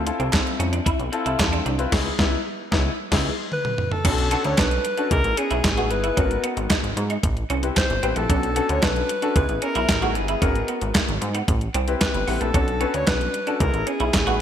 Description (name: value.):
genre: early-eighties boogie funk.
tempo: 113 BPM.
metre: 4/4.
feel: straight.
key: unclear.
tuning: A4 = 439 Hz.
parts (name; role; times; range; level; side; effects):
chorused synth bass; bass; 0.0-14.4 s; G1 to G#2; -25 LUFS; equal; none.
clear concert grand piano; accompaniment; 0.1-14.4 s; A#3 to B4; -27 LUFS; left 5 dB; lush chorus.
semi-hollow electric guitar; riff; 0.1-14.4 s; A3 to F#4; -29 LUFS; right 3 dB; ensemble chorus.
crisp 8-bit digital drum machine; drums; 0.1-14.4 s; crash cymbal, hi-hat, kick drum, snare drum, toms; -23 LUFS; equal; overdrive, gated reverb.
group handclap; percussion; 0.3-14.3 s; none; -34 LUFS; right 6 dB; none.
clear alto saxophone; melody; 3.5-14.4 s; G#4 to C#5; -26 LUFS; equal; none.
room: light reverb, digital ambience.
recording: bright 1980s-style digital production.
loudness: -20 LUFS.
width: side -9 dB against mid.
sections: 0.0-4.0 A section; 4.0-14.4 B section.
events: band accent 1.9-4.0; drum fill 3.0-4.0.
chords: 0.0 Dm9; 1.9 C#m9; 4.0 Bm9; 5.1 C#m9; 6.2 G#m9; 7.2 Am9; 8.3 Bm9; 9.4 C#m9; 10.4 G#m9; 11.5 Am9; 12.5 Bm9; 13.6 C#m9.